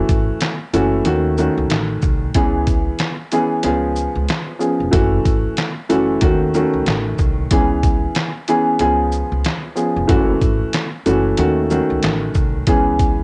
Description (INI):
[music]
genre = hip hop, boom-bap hip-hop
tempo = 93 BPM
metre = 4/4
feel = swing 60% on 16ths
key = C# minor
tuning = A4 = 440 Hz
[part]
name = dark upright piano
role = accompaniment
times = 0.0-13.2 s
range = D#3 to G#4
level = -20 LUFS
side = equal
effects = cassette tape, high-pass filter, low-pass filter
[part]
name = upright bass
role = bass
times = 0.0-13.2 s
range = E#1 to D#2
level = -24 LUFS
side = equal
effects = none
[part]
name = trip hop sampler-style drum kit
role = drums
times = 0.1-13.2 s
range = handclaps, hi-hat, kick drum, shaker, snare drum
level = -22 LUFS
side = equal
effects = none
[sound]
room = light reverb, studio ambience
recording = home recording on cassette, nothing above 10.4 kHz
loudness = -18 LUFS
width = mono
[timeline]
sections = 0.0-13.2 A section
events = none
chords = 0.0 F#m7; 1.1 D#m7b5; 2.4 C#m7; 3.6 C#7; 4.9 F#m7; 6.2 D#m7b5; 7.5 C#m7; 8.8 C#7; 10.1 F#m7; 11.4 D#m7b5; 12.7 C#m7